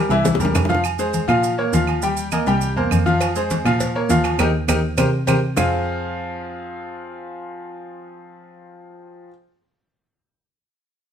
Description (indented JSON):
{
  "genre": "latin, salsa",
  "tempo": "203 BPM",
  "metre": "4/4",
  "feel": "straight",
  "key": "F minor",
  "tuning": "A4 = 442 Hz",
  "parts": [
    { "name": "bright upright piano", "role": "accompaniment", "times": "0.0-9.3 s", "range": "E3 to G5", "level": "-22 LUFS", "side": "left 1 dB", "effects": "none" },
    { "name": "muted cello", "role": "bass", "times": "0.0-8.7 s", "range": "C2 to C3", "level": "-22 LUFS", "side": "equal", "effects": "none" },
    { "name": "congas", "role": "percussion", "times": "0.1-5.6 s", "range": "none", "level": "-26 LUFS", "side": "left 4 dB", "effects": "none" },
    { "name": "maracas", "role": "percussion", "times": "0.1-5.6 s", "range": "none", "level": "-33 LUFS", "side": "right 10 dB", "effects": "none" },
    { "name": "timbales and agogo bells", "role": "percussion", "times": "0.1-5.6 s", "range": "none", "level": "-28 LUFS", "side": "right 11 dB", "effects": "none" },
    { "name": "cowbell and bongos", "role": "percussion", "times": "0.3-0.8, 3.2-5.6 s", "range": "none", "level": "-27 LUFS", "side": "left 2 dB", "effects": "none" },
    { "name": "claves", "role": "percussion", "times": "0.5-5.6 s", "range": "none", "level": "-29 LUFS", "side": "right 8 dB", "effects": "none" }
  ],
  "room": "moderate studio reverb, RT60 0.8 s",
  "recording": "none",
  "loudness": "-17 LUFS",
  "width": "side -8 dB against mid",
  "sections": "0.8-5.6 A section; 5.6-7.9 B section",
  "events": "drum fill 0.1-0.8, 5.1-5.6; band accent 4.4-5.6",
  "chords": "0.2 C7; 0.8 Fm; 1.4 Bbm; 2.0 Eb; 2.6 C7; 3.2 Fm; 3.8 Bbm; 4.4 Eb; 5.0 C5; 5.6 Fm"
}